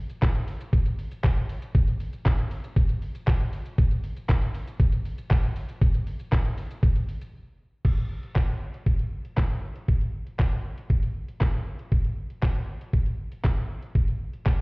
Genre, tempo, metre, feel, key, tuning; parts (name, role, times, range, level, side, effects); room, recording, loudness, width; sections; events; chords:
pop; 118 BPM; 4/4; straight
detuned 8-bit digital drum machine; drums; 0.1-14.6 s; crash cymbal, handclaps, hi-hat, kick drum, shaker; -22 LUFS; equal
group handclap; percussion; 0.2-14.6 s; -46 LUFS; left 1 dB
digital ambience; heard muffled through a wall, stone room reverb, EQ; -24 LUFS; side -30 dB against mid
0.0-7.8 A section; 7.8-14.6 B section
drop 0.0-7.8; break 7.3-7.8